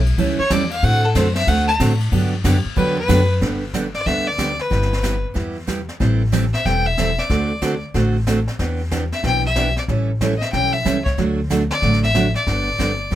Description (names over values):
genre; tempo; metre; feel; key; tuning
country, western swing; 186 BPM; 4/4; swing 64% on 8ths; G major; A4 = 440 Hz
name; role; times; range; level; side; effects
upright bass; bass; 0.0-13.2 s; E1 to A2; -20 LUFS; left 1 dB; none
jazz brush drum kit; drums; 0.1-13.2 s; brushed snare drum, hi-hat, kick drum, ride cymbal, snare drum; -27 LUFS; left 1 dB; none
picked steel-string acoustic guitar; accompaniment; 0.2-13.2 s; D3 to A4; -21 LUFS; right 4 dB; none
clear fiddle; melody; 0.4-13.2 s; A4 to A5; -21 LUFS; left 2 dB; none
room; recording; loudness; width
light reverb; none; -16 LUFS; side -13 dB against mid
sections
0.0-3.4 A section; 3.4-13.2 B section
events
fiddle solo 0.0-3.4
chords
0.0 A7; 0.8 D7; 2.1 Gmaj7; 3.4 G; 4.7 Em/G; 6.0 Am7; 7.3 D7; 8.6 Em7; 9.9 A7; 11.2 D; 12.5 Gadd9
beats
0.18 0.51 | 0.83 1.15 1.48 1.80 | 2.12 2.44 2.77 3.09 | 3.42 3.74 4.06 4.39 | 4.71 5.03 5.36 5.68 | 6.00 6.33 6.65 6.97 | 7.30 7.62 7.95 8.27 | 8.59 8.92 9.24 9.56 | 9.89 10.21 10.53 10.86 | 11.18 11.50 11.83 12.15 | 12.47 12.79 13.12